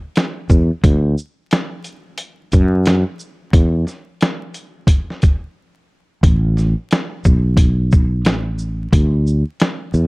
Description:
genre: hip hop, jazz-hop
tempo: 89 BPM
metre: 4/4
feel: swing 65% on 16ths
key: unclear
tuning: A4 = 441 Hz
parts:
  - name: trip hop sampler-style drum kit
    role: drums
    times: 0.2-10.1 s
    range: hi-hat, kick drum, shaker, snare drum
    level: -15 LUFS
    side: equal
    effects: none
  - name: sustaining fretless electric bass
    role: bass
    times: 0.5-10.1 s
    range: A1 to F#2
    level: -15 LUFS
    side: equal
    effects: none
room: digital ambience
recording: dry, close 1970s-style studio recording, vinyl crackle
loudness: -14 LUFS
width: side -28 dB against mid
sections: 0.0-6.2 A section; 6.2-10.1 B section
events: break 5.6-6.2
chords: none

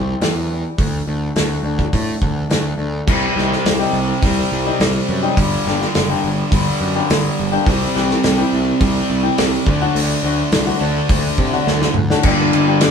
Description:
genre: quiet-loud alternative rock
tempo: 105 BPM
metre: 4/4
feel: straight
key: unclear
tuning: A4 = 440 Hz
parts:
  - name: fingerpicked swing-style acoustic guitar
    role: arpeggios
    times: 0.0-12.9 s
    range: G2 to G4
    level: -22 LUFS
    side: left 7 dB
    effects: none
  - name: fuzz picked electric bass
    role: bass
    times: 0.0-12.9 s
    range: F#1 to C3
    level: -20 LUFS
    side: right 1 dB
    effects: overdrive
  - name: loose indie drum kit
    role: drums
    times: 0.2-12.9 s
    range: crash cymbal, hi-hat, kick drum, ride cymbal, snare drum, toms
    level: -19 LUFS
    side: equal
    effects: none
  - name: fuzz guitar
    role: riff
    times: 3.1-12.9 s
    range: G2 to D4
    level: -19 LUFS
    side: right 1 dB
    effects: distortion
room: moderate stone room reverb, RT60 1.1 s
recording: band playing live in one room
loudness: -15 LUFS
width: side -6 dB against mid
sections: 0.0-3.1 A section; 3.1-12.2 B section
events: drum fill 11.7-12.2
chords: 0.0 C; 0.8 D; 3.1 Cm; 5.4 Gm; 7.7 C; 9.7 D; 12.2 Gm

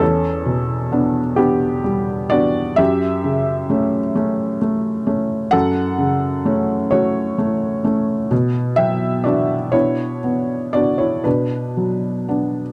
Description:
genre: neoclassical minimalist piano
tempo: 38-44 BPM (dotted quarters)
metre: 6/8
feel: rubato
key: B minor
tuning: A4 = 440 Hz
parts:
  - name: felt-muted upright piano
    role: solo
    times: 0.0-12.7 s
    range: E2 to G5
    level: -19 LUFS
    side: equal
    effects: none
room: light reverb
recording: dry, close 1970s-style studio recording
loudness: -19 LUFS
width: mono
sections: 0.0-12.7 A section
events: none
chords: 0.0 Em7; 2.8 F#m; 8.3 Bm

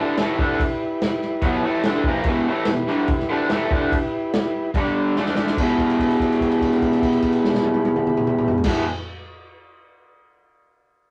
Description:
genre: garage rock duo or trio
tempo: 144 BPM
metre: 4/4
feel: straight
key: E minor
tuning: A4 = 438 Hz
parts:
  - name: combo organ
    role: sustained chords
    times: 0.0-8.9 s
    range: D4 to D5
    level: -28 LUFS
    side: equal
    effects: none
  - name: crunchy overdriven guitar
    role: riff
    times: 0.0-8.9 s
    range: E2 to D4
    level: -23 LUFS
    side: equal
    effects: none
  - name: vintage drum kit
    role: drums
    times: 0.2-8.7 s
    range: crash cymbal, kick drum, snare drum, toms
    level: -27 LUFS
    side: equal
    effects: none
room: moderate studio reverb, RT60 0.6 s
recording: rough rehearsal-room recording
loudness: -21 LUFS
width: mono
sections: 0.0-5.6 A section; 5.6-8.9 B section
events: drum fill 5.2-5.6; held note 5.6-8.7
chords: 0.0 Em; 4.7 G5; 5.2 D5; 5.6 Em

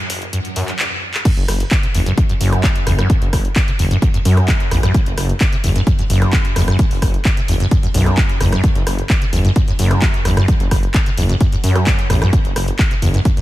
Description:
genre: driving peak-time techno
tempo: 130 BPM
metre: 4/4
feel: straight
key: F# minor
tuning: A4 = 441 Hz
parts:
  - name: detuned saw bass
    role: bass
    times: 0.1-13.2 s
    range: F#1 to F#2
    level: -18 LUFS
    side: equal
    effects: sidechain pumping, high-pass filter
  - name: punchy analog drum machine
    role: drums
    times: 0.1-13.4 s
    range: crash cymbal, handclaps, hi-hat, rim click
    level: -23 LUFS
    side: equal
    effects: none
  - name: acid bass, saw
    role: riff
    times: 0.3-13.4 s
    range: E2 to F#3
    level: -18 LUFS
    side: equal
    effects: lush chorus, sidechain pumping, diffuse ambient delay
  - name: electronic kick drum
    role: drums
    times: 1.3-13.3 s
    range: none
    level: -15 LUFS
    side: equal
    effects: overdrive
room: light reverb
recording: none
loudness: -13 LUFS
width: side -16 dB against mid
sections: 0.0-1.3 A section; 1.3-13.4 B section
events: build-up 0.0-1.3; drum fill 0.8-1.3; drop 1.3-13.4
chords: none

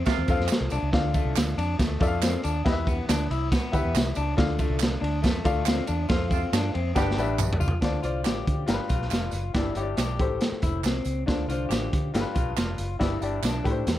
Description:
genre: uptempo 1960s-style soul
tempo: 139 BPM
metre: 4/4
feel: straight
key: D dorian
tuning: A4 = 440 Hz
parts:
  - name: electric guitar through a small old amp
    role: riff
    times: 0.0-13.8 s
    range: A3 to G4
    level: -33 LUFS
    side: left 3 dB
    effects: none
  - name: mellow horn section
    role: second line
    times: 0.1-0.4, 6.3-7.3 s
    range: C3 to G4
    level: -32 LUFS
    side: right 15 dB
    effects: none
  - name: crunchy breakbeat drum kit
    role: drums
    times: 0.1-14.0 s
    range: hi-hat, kick drum, ride cymbal, snare drum, toms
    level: -26 LUFS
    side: right 1 dB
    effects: none
  - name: tambourine and handclaps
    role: percussion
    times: 0.1-14.0 s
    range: none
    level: -37 LUFS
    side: right 16 dB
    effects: none
  - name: vintage muted fingered electric bass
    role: bass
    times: 0.2-14.0 s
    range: F1 to D3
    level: -29 LUFS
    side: right 1 dB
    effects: none
  - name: clear upright piano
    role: accompaniment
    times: 0.3-14.0 s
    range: G2 to G5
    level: -30 LUFS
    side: left 4 dB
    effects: none
room: light reverb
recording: dark, warm production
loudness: -23 LUFS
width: side -13 dB against mid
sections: 0.0-7.8 A section; 7.8-14.0 B section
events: band accent 0.0-0.9, 6.1-7.8; drum fill 7.0-7.8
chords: 0.0 F; 0.9 Dm; 2.7 Em; 4.4 Dm; 6.1 F; 7.0 G; 7.8 Dm7; 8.7 G7; 9.5 Em7/G; 10.2 Am7; 11.3 Dm7; 12.1 G7; 13.0 Em7/G

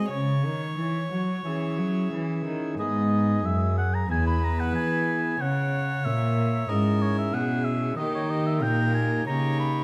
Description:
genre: classical, baroque-style sonata movement with continuo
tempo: 92 BPM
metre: 4/4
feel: straight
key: G# minor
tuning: A4 = 439 Hz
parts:
  - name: rich violin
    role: melody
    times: 0.0-9.8 s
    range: G4 to D#5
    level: -39 LUFS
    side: equal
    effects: none
  - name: warm oboe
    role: second line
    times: 0.0-9.8 s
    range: C#5 to B5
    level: -32 LUFS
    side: equal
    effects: none
  - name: chamber organ, principal chorus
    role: accompaniment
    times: 0.0-9.8 s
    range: E2 to G#4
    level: -31 LUFS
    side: equal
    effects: none
  - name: warm cello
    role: bass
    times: 0.0-9.8 s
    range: E2 to F#3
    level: -29 LUFS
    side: equal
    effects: none
room: wet large studio reverb, RT60 1.3 s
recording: none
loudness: -26 LUFS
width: mono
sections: 0.0-2.8 A section; 2.8-9.8 A section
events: none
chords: 0.1 C#m; 2.8 G#m; 4.1 E; 5.4 C#m; 8.0 D#; 9.3 D#7/C#

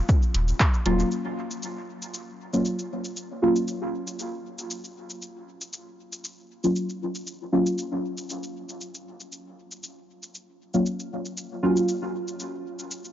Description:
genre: dub techno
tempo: 117 BPM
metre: 4/4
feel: swing 53% on 16ths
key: unclear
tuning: A4 = 440 Hz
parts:
  - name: deep house drum kit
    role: drums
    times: 0.1-13.1 s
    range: handclaps, hi-hat, shaker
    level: -32 LUFS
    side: equal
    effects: overdrive, dub echo
  - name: electronic kick drum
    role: drums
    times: 0.1-0.7 s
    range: none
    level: -20 LUFS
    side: equal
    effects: overdrive
  - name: warm sub bass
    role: bass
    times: 0.3-1.0 s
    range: Eb1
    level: -24 LUFS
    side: equal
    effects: sidechain pumping
  - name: deep mellow chord stab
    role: stabs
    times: 0.9-3.5, 6.6-7.7, 10.7-11.8 s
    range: Gb3 to F4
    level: -26 LUFS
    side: equal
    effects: chorus, phaser, sidechain pumping, dub echo
room: light reverb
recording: dry, gritty hardware recording, nothing above 7.5 kHz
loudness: -25 LUFS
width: side -11 dB against mid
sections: 0.0-1.1 A section; 1.1-13.1 B section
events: none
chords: 0.0 Ebm7; 1.1 Gbmaj7

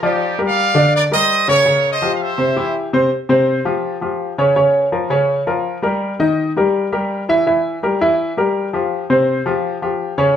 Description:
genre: latin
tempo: 165 BPM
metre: 4/4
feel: straight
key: unclear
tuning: A4 = 443 Hz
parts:
  - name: brilliant trumpet section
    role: melody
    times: 0.0-2.8 s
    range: Eb4 to F5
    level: -16 LUFS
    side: right 1 dB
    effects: none
  - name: warm concert grand piano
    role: accompaniment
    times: 0.0-10.3 s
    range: C3 to E5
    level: -15 LUFS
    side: left 1 dB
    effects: none
room: wet studio reverb, RT60 0.5 s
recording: band playing live in one room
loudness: -14 LUFS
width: side -9 dB against mid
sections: 0.0-3.1 A section; 3.1-10.4 B section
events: none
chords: 0.2 Ebmaj9; 1.7 Gm7b5; 2.4 C; 3.1 Fsus2; 4.6 Bbm; 6.0 Eb; 7.5 Edim; 8.9 Fsus2

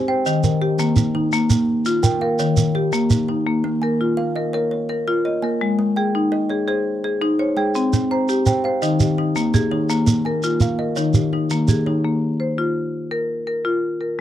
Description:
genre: southern african traditional, mbira-style interlocking cycle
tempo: 112 BPM (dotted quarters)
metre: 12/8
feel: straight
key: Bb dorian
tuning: A4 = 440 Hz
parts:
  - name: kalimba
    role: arpeggios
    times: 0.0-12.4 s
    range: Eb3 to Bb5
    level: -24 LUFS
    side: right 6 dB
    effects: none
  - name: marimba with hard mallets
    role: arpeggios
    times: 0.0-14.2 s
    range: Eb3 to Eb5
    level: -19 LUFS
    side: left 3 dB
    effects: none
  - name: shekere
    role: percussion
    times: 0.3-3.3, 7.8-11.8 s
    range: none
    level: -20 LUFS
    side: right 3 dB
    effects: none
room: little or no reverb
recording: dry, close 1970s-style studio recording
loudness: -17 LUFS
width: side -11 dB against mid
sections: 0.0-3.5 A section; 3.5-12.0 A section; 12.0-14.2 B section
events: none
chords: 0.3 Eb; 1.3 Bb5; 2.4 Eb; 3.5 Bbm; 5.6 Ab; 7.8 C5; 8.8 Eb; 12.0 Bbm

